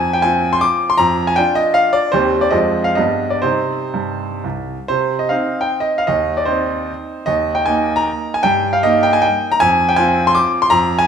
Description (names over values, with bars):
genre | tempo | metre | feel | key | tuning
classical, romantic triple-time dance for piano with dotted rhythms | 112-173 BPM | 3/4 | rubato | C minor | A4 = 441 Hz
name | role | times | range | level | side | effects
bright grand piano | solo | 0.0-11.1 s | C2 to D6 | -14 LUFS | equal | none
room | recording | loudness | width
moderate recital hall reverb, RT60 1.3 s | minimal, uncompressed stereo recording | -14 LUFS | side -7 dB against mid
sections
0.0-4.9 A section; 4.9-11.1 A section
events
none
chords
0.0 F5; 1.0 F7sus2; 2.1 Cm/Eb; 2.5 Fm7; 3.0 G; 3.4 Cm; 6.1 Cm/Eb; 7.3 Eb5; 8.4 Eb/G; 9.6 F5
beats
0.23 0.62 | 0.99 1.37 1.76 | 2.14 2.53 2.98 | 3.44 3.94 4.44 | 4.89 5.30 5.72 | 6.09 6.48 6.89 | 7.27 7.67 8.07 | 8.44 8.83 9.24 | 9.61 9.98 10.36 | 10.71